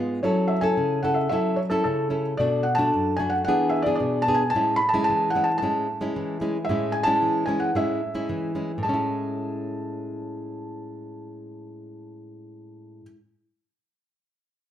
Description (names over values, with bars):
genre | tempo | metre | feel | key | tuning
samba | 112 BPM | 4/4 | straight | A major | A4 = 440 Hz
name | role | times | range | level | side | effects
nylon-string guitar | accompaniment | 0.0-13.2 s | F#2 to A4 | -25 LUFS | equal | none
felt-muted upright piano | melody | 0.2-13.0 s | A4 to B5 | -24 LUFS | equal | plate reverb
room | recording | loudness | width
wet studio reverb, RT60 0.8 s | heard from further back in the room | -22 LUFS | side -10 dB against mid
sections
0.0-8.8 A section; 8.8-13.1 B section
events
none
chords
0.2 F#m7; 2.4 Bm7; 3.5 E7; 4.5 Amaj7